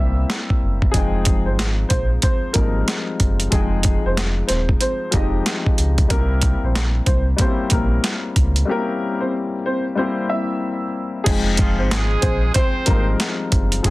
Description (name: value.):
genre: hip hop, boom-bap hip-hop.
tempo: 93 BPM.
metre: 4/4.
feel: swing 63% on 16ths.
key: F minor.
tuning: A4 = 440 Hz.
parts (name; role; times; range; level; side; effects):
warm upright piano; melody; 0.0-13.9 s; Ab3 to E5; -26 LUFS; equal; high-pass filter, low-pass filter.
dark baby grand piano; accompaniment; 0.0-13.9 s; F3 to G5; -24 LUFS; left 3 dB; cassette tape, high-pass filter, low-pass filter.
sub bass with octave; bass; 0.0-13.9 s; Eb1 to Db2; -20 LUFS; equal; none.
dusty soul sampler-style drum kit; drums; 0.3-13.9 s; crash cymbal, handclaps, hi-hat, kick drum, snare drum; -19 LUFS; equal; overdrive.
warm horn section; stabs; 11.6-13.2 s; F3 to C5; -26 LUFS; right 2 dB; high-pass filter, low-pass filter, digital delay.
room: little or no reverb.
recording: dense, heavily limited modern master.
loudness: -17 LUFS.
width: side -20 dB against mid.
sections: 0.0-11.3 A section; 11.3-13.9 B section.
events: break 0.0-0.9, 8.7-11.3.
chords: 0.0 C7; 0.9 Fm7; 6.1 C7; 11.3 Fm7.